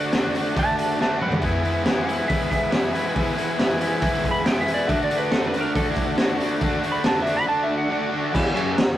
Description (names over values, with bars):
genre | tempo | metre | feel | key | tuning
garage rock duo or trio | 139 BPM | 4/4 | straight | E mixolydian | A4 = 441 Hz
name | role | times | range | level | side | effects
combo organ | sustained chords | 0.0-8.3 s | D4 to D5 | -30 LUFS | left 1 dB | none
overdriven semi-hollow guitar | riff | 0.0-8.8 s | E2 to F#4 | -24 LUFS | left 1 dB | none
crunchy breakbeat drum kit | drums | 0.1-8.9 s | crash cymbal, hi-hat, kick drum, ride cymbal, snare drum, toms | -23 LUFS | equal | none
clean lap steel guitar | melody | 0.6-8.2 s | E4 to B5 | -25 LUFS | right 1 dB | none
room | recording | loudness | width
light reverb | rough rehearsal-room recording, warm saturation | -20 LUFS | side -12 dB against mid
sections
0.0-8.3 A section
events
drum fill 1.0-1.4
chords
0.0 D; 1.4 E; 4.9 D; 8.3 E5